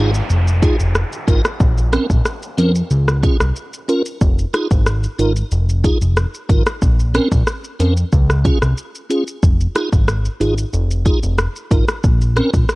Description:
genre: dancehall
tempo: 92 BPM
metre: 4/4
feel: straight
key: F minor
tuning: A4 = 440 Hz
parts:
  - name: tonewheel organ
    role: accompaniment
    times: 0.0-12.5 s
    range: C4 to Bb4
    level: -20 LUFS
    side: right 2 dB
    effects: chorus vibrato, slow rotary speaker
  - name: fat analog bass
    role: bass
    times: 0.0-12.7 s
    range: F1 to F2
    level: -16 LUFS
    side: equal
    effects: none
  - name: downlifter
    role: sound effects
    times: 0.0-4.2 s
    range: none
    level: -30 LUFS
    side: equal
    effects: none
  - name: deep house drum kit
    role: drums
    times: 0.1-12.8 s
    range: hi-hat, kick drum, rim click, shaker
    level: -16 LUFS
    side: equal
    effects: none
room: little or no reverb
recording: worn, warbling old tape, cassette tape, warbly pitch drift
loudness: -14 LUFS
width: side -22 dB against mid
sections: 0.0-12.8 A section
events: none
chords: 0.0 Fm7; 1.6 Bbmadd9; 2.9 Db; 4.2 Fm7; 6.8 Bbmadd9; 8.1 Db; 9.4 Fm7; 12.0 Bbmadd9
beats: 0.30 0.95 | 1.60 2.25 2.91 3.56 | 4.21 4.86 5.52 6.17 | 6.82 7.47 8.12 8.78 | 9.43 10.08 10.73 11.38 | 12.04 12.69

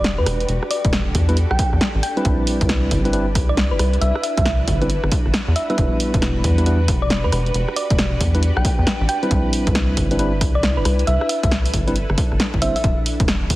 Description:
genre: UK garage, two-step garage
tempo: 136 BPM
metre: 4/4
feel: swing 64% on 16ths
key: E minor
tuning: A4 = 440 Hz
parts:
  - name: thumb-piano-like synth pluck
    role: melody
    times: 0.0-12.8 s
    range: B4 to G5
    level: -25 LUFS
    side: equal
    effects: chorus, digital delay
  - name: soft string machine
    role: sustained chords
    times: 0.0-13.6 s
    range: D4 to B4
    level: -30 LUFS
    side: equal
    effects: ensemble chorus, sidechain pumping
  - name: rubbery square bass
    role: bass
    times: 0.0-13.6 s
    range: E1 to E2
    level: -20 LUFS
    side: equal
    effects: tube saturation, sidechain pumping
  - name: punchy analog drum machine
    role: drums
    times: 0.0-13.6 s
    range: hi-hat, rim click, snare drum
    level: -24 LUFS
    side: equal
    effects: none
  - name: electronic kick drum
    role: drums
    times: 0.8-13.6 s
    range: none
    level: -21 LUFS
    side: equal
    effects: none
  - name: mellow tine electric piano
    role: stabs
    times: 1.3-12.7 s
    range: G3 to C5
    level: -23 LUFS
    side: equal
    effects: low-pass filter, digital delay
room: light reverb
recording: heavily compressed radio sound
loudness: -16 LUFS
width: side -17 dB against mid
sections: 0.0-13.6 A section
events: none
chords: 0.0 Em7; 2.2 Cmaj9; 5.8 Em7; 9.3 Cmaj9; 12.8 Em7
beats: 0.04 | 0.49 0.93 1.37 1.81 | 2.25 2.69 3.13 3.57 | 4.01 4.46 4.90 5.34 | 5.78 6.22 6.66 7.10 | 7.54 7.99 8.43 8.87 | 9.31 9.75 10.19 10.63 | 11.07 11.52 11.96 12.40 | 12.84 13.28

